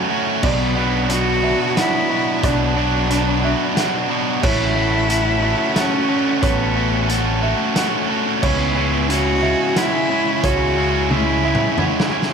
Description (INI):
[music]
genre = post-rock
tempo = 90 BPM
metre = 3/4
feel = straight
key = F# minor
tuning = A4 = 440 Hz
[part]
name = rich cello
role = melody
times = 0.0-12.1 s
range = A3 to F#4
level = -22 LUFS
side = left 1 dB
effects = tape echo
[part]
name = felt-muted upright piano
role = arpeggios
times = 0.0-12.3 s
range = C#5 to F#5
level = -28 LUFS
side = right 7 dB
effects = tape echo
[part]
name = distorted electric guitar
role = riff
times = 0.0-12.3 s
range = B2 to A4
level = -23 LUFS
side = left 15 dB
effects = overdrive
[part]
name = distorted electric guitar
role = riff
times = 0.0-12.3 s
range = B2 to A4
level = -21 LUFS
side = right 14 dB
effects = overdrive
[part]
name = growling picked electric bass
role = bass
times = 0.4-11.5 s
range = A1 to C#2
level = -22 LUFS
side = left 1 dB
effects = overdrive
[part]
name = loose indie drum kit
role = drums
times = 0.4-12.3 s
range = crash cymbal, hi-hat, kick drum, snare drum, toms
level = -23 LUFS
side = left 1 dB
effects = none
[sound]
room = light reverb, small room ambience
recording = none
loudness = -16 LUFS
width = side -6 dB against mid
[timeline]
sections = 0.0-12.3 A section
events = drum fill 11.1-12.3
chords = 0.4 Bm; 4.4 F#m7/A; 8.4 C#m